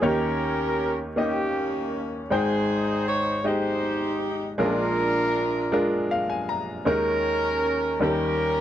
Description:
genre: gospel.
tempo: 53 BPM (dotted quarters).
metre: 6/8.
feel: straight.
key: unclear.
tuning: A4 = 439 Hz.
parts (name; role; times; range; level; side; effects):
mellow horn section; melody; 0.0-8.6 s; Bb3 to Db5; -24 LUFS; equal; none.
clear baby grand piano; accompaniment; 0.0-8.6 s; Ab1 to Bb5; -26 LUFS; equal; none.
room: little or no reverb.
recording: dry, close 1970s-style studio recording.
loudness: -22 LUFS.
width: side -11 dB against mid.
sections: 0.0-8.6 A section.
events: grand piano fill 5.7-6.9.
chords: 0.0 Eb7; 2.3 Abmaj7; 4.6 Bb7; 6.9 Eb7sus4; 8.0 Eb7.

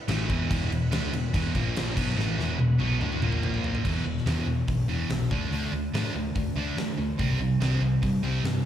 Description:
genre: hard rock.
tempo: 143 BPM.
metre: 4/4.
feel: straight.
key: E minor.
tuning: A4 = 435 Hz.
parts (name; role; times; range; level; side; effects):
overdriven tonewheel organ; sustained chords; 0.0-3.8 s; A#3 to F#5; -42 LUFS; left 1 dB; slow rotary speaker, chorus vibrato.
cranked stack guitar; riff; 0.1-8.6 s; E2 to D4; -30 LUFS; right 8 dB; overdrive, spring reverb.
sludgy distorted guitar; riff; 0.1-8.6 s; E2 to D4; -30 LUFS; left 7 dB; overdrive.
hollow-body short-scale picked electric bass; bass; 0.1-8.6 s; E1 to D3; -29 LUFS; equal; none.
huge arena drum kit; drums; 0.1-8.5 s; crash cymbal, hi-hat, kick drum, snare drum, toms; -32 LUFS; equal; none.
room: light reverb.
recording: live gig heard through the venue's PA, club reverb.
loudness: -24 LUFS.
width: side -10 dB against mid.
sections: 0.0-3.8 A section; 3.8-8.7 B section.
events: drum fill 2.2-3.8.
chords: 0.0 E5; 1.5 A#5; 2.0 E5; 3.2 A#5; 3.8 E5; 5.3 D5; 7.2 C5.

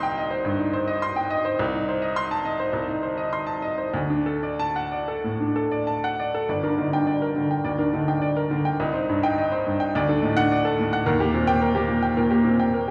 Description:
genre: classical, romantic character piece for solo piano.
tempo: 91-112 BPM.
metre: 4/4.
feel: rubato.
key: G minor.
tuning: A4 = 441 Hz.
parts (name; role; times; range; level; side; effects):
clear grand piano; solo; 0.0-12.9 s; G1 to C6; -24 LUFS; equal; none.
room: wet recital hall reverb, RT60 1.3 s.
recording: heard from further back in the room.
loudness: -24 LUFS.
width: mono.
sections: 0.0-6.5 A section; 6.5-12.9 B section.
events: none.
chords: 0.0 Cm; 1.6 Adim/C; 3.9 D; 6.5 Gm; 8.8 Cm; 9.9 D; 11.1 Eb.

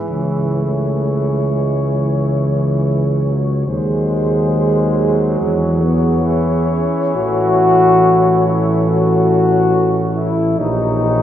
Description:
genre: classical, hymn-like piece for brass band.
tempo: 70 BPM.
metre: 4/4.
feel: rubato.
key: unclear.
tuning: A4 = 441 Hz.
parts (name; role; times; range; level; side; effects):
mellow French horn section; second line; 0.0-11.2 s; G4 to A4; -24 LUFS; right 7 dB; none.
bright trombone; accompaniment; 0.0-11.2 s; E3 to F#3; -25 LUFS; equal; none.
dark flugelhorn; melody; 0.1-11.2 s; B#4 to C#5; -24 LUFS; left 4 dB; none.
dark trombone section; accompaniment; 0.1-11.2 s; E3 to F#4; -17 LUFS; left 2 dB; none.
mellow tuba; bass; 0.1-11.2 s; A1 to E2; -17 LUFS; equal; none.
room: wet concert hall reverb, RT60 2.1 s.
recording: heard from further back in the room.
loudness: -13 LUFS.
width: side -10 dB against mid.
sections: 0.0-11.2 A section.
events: none.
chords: 0.1 C#m; 3.7 G#7/D#; 5.4 C#m/E; 7.2 F#m7/A; 10.6 A#dim7.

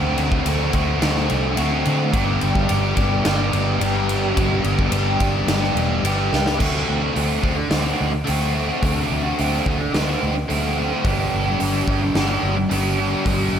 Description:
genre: rock, shoegaze and dream pop.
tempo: 108 BPM.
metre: 4/4.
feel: straight.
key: D mixolydian.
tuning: A4 = 439 Hz.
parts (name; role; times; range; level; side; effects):
biting overdriven guitar; riff; 0.0-13.6 s; G2 to G4; -20 LUFS; equal; wide subtle chorus.
vintage muted fingered electric bass; bass; 0.0-13.6 s; E1 to D3; -23 LUFS; equal; none.
huge arena drum kit; drums; 0.2-13.4 s; crash cymbal, hi-hat, kick drum, ride cymbal, snare drum; -25 LUFS; equal; none.
room: moderate concert hall reverb, RT60 2.3 s.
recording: none.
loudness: -18 LUFS.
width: side -8 dB against mid.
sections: 0.0-6.6 A section; 6.6-13.6 B section.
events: drum fill 6.3.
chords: 0.0 D7; 2.1 G; 6.6 D7; 11.0 G.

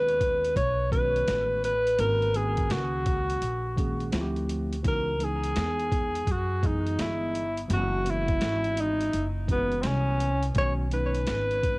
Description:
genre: hip hop, jazz-hop.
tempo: 84 BPM.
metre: 4/4.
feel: swing 65% on 16ths.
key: C# dorian.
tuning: A4 = 440 Hz.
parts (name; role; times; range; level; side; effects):
breathy alto saxophone; melody; 0.0-11.8 s; B3 to C#5; -27 LUFS; equal; cassette tape, tape echo.
mellow tine electric piano; accompaniment; 0.0-11.8 s; D#3 to D#5; -34 LUFS; right 1 dB; medium stereo tremolo, cassette tape.
upright bass; bass; 0.0-11.8 s; F#1 to F#2; -30 LUFS; equal; none.
boom bap sampler-style drum kit; drums; 0.1-11.8 s; hi-hat, kick drum, snare drum; -31 LUFS; equal; cassette tape.
room: small room ambience.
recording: home recording on cassette.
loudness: -24 LUFS.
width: side -26 dB against mid.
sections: 0.0-11.8 A section.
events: none.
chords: 0.0 B6; 2.0 G#9sus4; 4.1 Dm11; 4.8 C#m11; 7.7 F#9sus4; 10.6 B6.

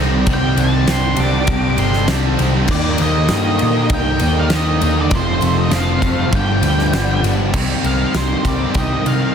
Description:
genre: rock, shoegaze and dream pop.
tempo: 99 BPM.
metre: 4/4.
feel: straight.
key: C dorian.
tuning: A4 = 440 Hz.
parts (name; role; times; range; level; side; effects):
phased analog pad; sustained chords; 0.0-9.3 s; Eb4 to C6; -30 LUFS; equal; phaser, chorus.
twangy electric guitar; arpeggios; 0.0-9.3 s; F3 to G4; -29 LUFS; left 1 dB; lush chorus, slapback echo.
biting overdriven guitar; riff; 0.0-9.3 s; F2 to G4; -22 LUFS; right 10 dB; reverse reverb.
distorted electric guitar; riff; 0.0-9.3 s; F2 to Eb4; -25 LUFS; equal; overdrive.
thick fuzz guitar; riff; 0.0-9.3 s; F2 to Eb4; -22 LUFS; left 10 dB; distortion, analog chorus.
vintage muted picked electric bass; bass; 0.0-9.2 s; F1 to C3; -19 LUFS; equal; none.
octave-fuzz lead guitar; melody; 0.3-9.3 s; C5 to D6; -23 LUFS; right 1 dB; distortion, slapback echo.
huge arena drum kit; drums; 0.3-9.2 s; crash cymbal, kick drum, ride cymbal, snare drum; -20 LUFS; equal; none.
tambourine; percussion; 0.3-9.2 s; none; -39 LUFS; left 4 dB; none.
room: small room ambience.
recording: dense, heavily limited modern master.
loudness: -14 LUFS.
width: side -7 dB against mid.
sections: 0.0-7.5 A section; 7.5-9.3 B section.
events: none.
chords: 0.0 Cmadd9; 2.7 Eb; 5.1 F; 6.3 G7; 7.5 Cm7.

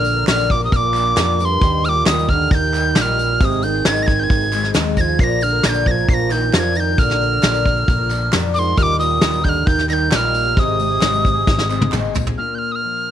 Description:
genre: indie folk with a building arrangement.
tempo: 134 BPM.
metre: 4/4.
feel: straight.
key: unclear.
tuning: A4 = 440 Hz.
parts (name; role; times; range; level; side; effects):
bright tin whistle; melody; 0.0-13.1 s; C6 to C7; -19 LUFS; equal; none.
mellow French horn; second line; 0.0-11.9 s; G2 to F3; -24 LUFS; right 11 dB; none.
picked twelve-string acoustic guitar; accompaniment; 0.0-12.4 s; Ab2 to Bb4; -25 LUFS; left 12 dB; none.
fingered electric bass; bass; 0.0-12.4 s; Ab1 to F2; -22 LUFS; equal; none.
tambourine; percussion; 0.0-12.3 s; none; -40 LUFS; left 13 dB; none.
soft brush drum kit; drums; 0.1-12.4 s; hi-hat, kick drum, snare drum, toms; -18 LUFS; equal; none.
group handclap; percussion; 0.3-12.0 s; none; -31 LUFS; right 11 dB; none.
fingerpicked steel-string acoustic guitar; accompaniment; 12.4-13.1 s; Bb2 to F4; -27 LUFS; left 11 dB; none.
room: small room ambience.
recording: 1960s-style stereo with parts hard left and right.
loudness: -14 LUFS.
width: side -10 dB against mid.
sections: 0.0-12.4 A section.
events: drum fill 11.5-12.4.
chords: 0.0 Bb; 1.6 Eb; 3.4 Ab; 5.2 Bb; 8.8 Eb; 10.6 Ab; 12.4 Bb.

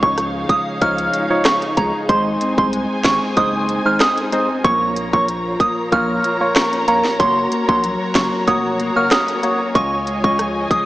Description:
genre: dancehall.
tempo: 94 BPM.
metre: 4/4.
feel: straight.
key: unclear.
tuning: A4 = 441 Hz.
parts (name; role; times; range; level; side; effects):
soft synth bell; melody; 0.0-10.8 s; Bb5 to F6; -19 LUFS; right 1 dB; chorus, tape echo.
percussive organ stab; accompaniment; 0.0-10.4 s; F3 to Eb5; -22 LUFS; equal; chorus, phaser, sidechain pumping.
dark studio string section; sustained chords; 0.0-10.9 s; Eb4 to Bb5; -24 LUFS; left 1 dB; none.
clean electric guitar; arpeggios; 0.0-10.9 s; Ab2 to Eb4; -26 LUFS; left 1 dB; lush chorus, tape echo.
saturated sub bass; bass; 0.0-10.7 s; F1 to Db2; -29 LUFS; equal; none.
island pop drum kit; drums; 0.0-10.9 s; finger snaps, hi-hat, kick drum, rim click, snare drum; -20 LUFS; equal; none.
room: wet lush hall reverb, RT60 2.4 s.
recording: dreamy mix soaked in reverb, small speaker sound.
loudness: -15 LUFS.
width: side -16 dB against mid.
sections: 0.0-10.9 A section.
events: none.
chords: 0.0 Dbadd9; 2.1 Ab; 4.6 Bbm; 7.2 Gb; 9.8 Dbadd9.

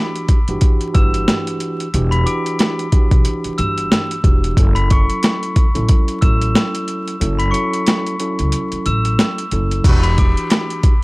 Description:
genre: hip hop, boom-bap hip-hop.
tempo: 91 BPM.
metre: 4/4.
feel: swing 59% on 16ths.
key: E dorian.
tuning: A4 = 444 Hz.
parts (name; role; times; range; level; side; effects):
glockenspiel with hard plastic mallets; melody; 0.0-11.0 s; B5 to E7; -23 LUFS; left 2 dB; high-pass filter, low-pass filter.
mellow tine electric piano; accompaniment; 0.0-10.9 s; E3 to A4; -23 LUFS; right 1 dB; medium stereo tremolo, cassette tape, high-pass filter, low-pass filter.
boom bap sampler-style drum kit; drums; 0.2-11.0 s; crash cymbal, hi-hat, kick drum, snare drum; -14 LUFS; equal; overdrive.
upright bass; bass; 0.5-10.3 s; E1 to C#2; -19 LUFS; equal; tube saturation.
clear horn section; stabs; 9.9-10.1 s; G3 to B4; -29 LUFS; equal; high-pass filter, low-pass filter, tape echo.
finger snaps; percussion; 10.5-10.7 s; none; -30 LUFS; equal; none.
room: studio ambience.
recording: dry, gritty hardware recording, vinyl crackle.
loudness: -14 LUFS.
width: side -23 dB against mid.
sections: 0.0-9.8 A section; 9.8-11.0 B section.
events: break 7.2-9.8.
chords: 0.0 Em9; 4.6 F#m7; 9.8 Em9.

